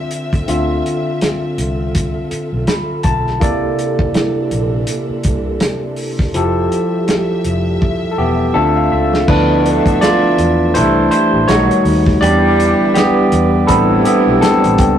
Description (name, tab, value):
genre	lush 1970s-style soul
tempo	82 BPM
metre	4/4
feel	swing 58% on 16ths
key	D dorian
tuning	A4 = 442 Hz
part	barky tine electric piano	accompaniment	0.0-15.0 s	C3 to B5	-14 LUFS	equal	none
part	warm studio string section	sustained chords	0.0-15.0 s	C3 to E5	-25 LUFS	right 1 dB	none
part	warm soul drum kit	drums	0.1-15.0 s	crash cymbal, hi-hat, kick drum, snare drum	-18 LUFS	equal	none
part	vintage muted fingered electric bass	bass	0.5-15.0 s	E1 to E2	-19 LUFS	equal	none
part	small celesta	texture	4.1-15.0 s	E4 to B5	-23 LUFS	right 4 dB	none
part	warm horn section	stabs	9.3-14.8 s	B2 to G4	-19 LUFS	equal	none
room	moderate studio reverb, RT60 0.6 s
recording	rough rehearsal-room recording, tube saturation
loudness	-12 LUFS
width	side -9 dB against mid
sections	0.0-9.3 A section; 9.3-15.0 B section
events	tine electric piano fill 2.3-3.4, 8.2-9.3; drum fill 7.8-9.3; tine electric piano solo 9.3-15.0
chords	0.0 Dm9; 3.4 C13; 6.3 Fmaj9; 8.5 Dm9; 9.3 Dm69; 10.7 C6; 11.5 B7b13; 12.2 Em7; 13.7 Am11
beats	| 0.48 1.21 1.94 2.68 | 3.41 4.14 4.88 5.61 | 6.35 7.08 7.81 8.55 | 9.28 10.02 10.75 11.48 | 12.22 12.95 13.68 14.42